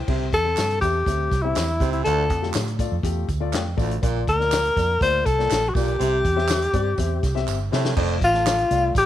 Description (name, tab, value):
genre	uptempo 1960s-style soul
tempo	122 BPM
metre	4/4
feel	straight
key	unclear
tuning	A4 = 439 Hz
part	dark upright piano	accompaniment	0.1-9.0 s	Bb2 to E5	-30 LUFS	left 10 dB	none
part	growling baritone saxophone	riff	0.1-8.2 s	D2 to C3	-30 LUFS	right 11 dB	none
part	vintage muted fingered electric bass	bass	0.1-9.1 s	F1 to C3	-25 LUFS	right 2 dB	none
part	vintage drum kit	drums	0.1-9.1 s	crash cymbal, hi-hat, kick drum, snare drum	-27 LUFS	left 1 dB	none
part	breathy tenor saxophone	melody	0.3-9.1 s	E4 to C5	-21 LUFS	left 2 dB	none
part	tambourine and handclaps	percussion	0.3-9.1 s	none	-35 LUFS	right 13 dB	none
room	studio reverb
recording	1960s-style stereo with parts hard left and right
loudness	-19 LUFS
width	side -12 dB against mid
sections	0.1-8.0 A section; 8.0-9.1 B section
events	drum fill 7.5-8.0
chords	0.1 C; 2.1 Dm; 4.0 Bb; 6.0 C; 8.0 F6